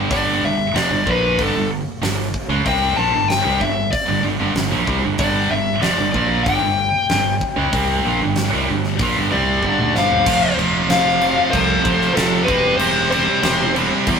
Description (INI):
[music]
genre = hard rock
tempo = 94 BPM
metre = 4/4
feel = straight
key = unclear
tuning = A4 = 445 Hz
[part]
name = scooped high-gain guitar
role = riff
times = 0.0-14.2 s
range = F2 to C4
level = -26 LUFS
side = left 5 dB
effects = distortion
[part]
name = scooped high-gain guitar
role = riff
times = 0.0-14.2 s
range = F2 to C4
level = -20 LUFS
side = right 5 dB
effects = distortion
[part]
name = modern bright fingered electric bass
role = bass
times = 0.0-14.2 s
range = E1 to E2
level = -24 LUFS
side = equal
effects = none
[part]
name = dark smooth lead guitar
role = melody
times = 0.1-13.7 s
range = A4 to A5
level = -19 LUFS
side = left 4 dB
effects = overdrive
[part]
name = huge arena drum kit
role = drums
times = 0.1-14.2 s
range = crash cymbal, hi-hat, kick drum, snare drum, toms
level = -24 LUFS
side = equal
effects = none
[part]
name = bluesy overdriven lead guitar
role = second line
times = 9.3-13.7 s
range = F4 to C5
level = -29 LUFS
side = right 4 dB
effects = distortion
[part]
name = distorted electric guitar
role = riff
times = 10.2-14.2 s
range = F2 to C4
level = -25 LUFS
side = equal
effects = overdrive
[sound]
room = moderate small room reverb, RT60 0.5 s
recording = rough rehearsal-room recording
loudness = -15 LUFS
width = side -6 dB against mid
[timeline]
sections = 0.0-10.3 A section; 10.3-14.2 B section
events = drum fill 9.6-10.3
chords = 0.0 G5; 10.3 F; 12.5 C/E